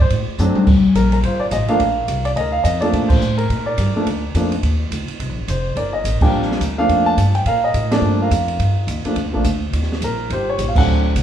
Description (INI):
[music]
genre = jazz piano trio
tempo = 212 BPM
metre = 4/4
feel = swing 60% on 8ths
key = G minor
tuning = A4 = 438 Hz
[part]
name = warm grand piano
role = melody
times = 0.0-11.2 s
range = F3 to A5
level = -19 LUFS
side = equal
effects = none
[part]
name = upright bass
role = bass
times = 0.0-11.2 s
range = F1 to Bb2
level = -20 LUFS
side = equal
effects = none
[part]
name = open jazz drum kit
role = drums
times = 0.1-11.2 s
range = crash cymbal, hi-hat, kick drum, ride cymbal, snare drum, toms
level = -21 LUFS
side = equal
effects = none
[sound]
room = wet large studio reverb, RT60 1.1 s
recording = band playing live in one room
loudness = -15 LUFS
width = side -10 dB against mid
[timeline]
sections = 0.7-11.2 A section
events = drum fill 0.4; band accent 3.1, 6.2, 7.9, 10.7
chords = 0.0 D7; 0.7 Gm7; 5.2 Cm7; 6.3 Gm7; 9.7 Eb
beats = 0.10 0.38 | 0.67 0.95 1.23 1.52 | 1.80 2.08 2.37 2.65 | 2.93 3.21 3.50 3.78 | 4.06 4.35 4.63 4.91 | 5.20 5.48 5.76 6.04 | 6.33 6.61 6.90 7.18 | 7.46 7.75 8.03 8.31 | 8.60 8.88 9.17 9.45 | 9.73 10.02 10.30 10.59 | 10.87 11.15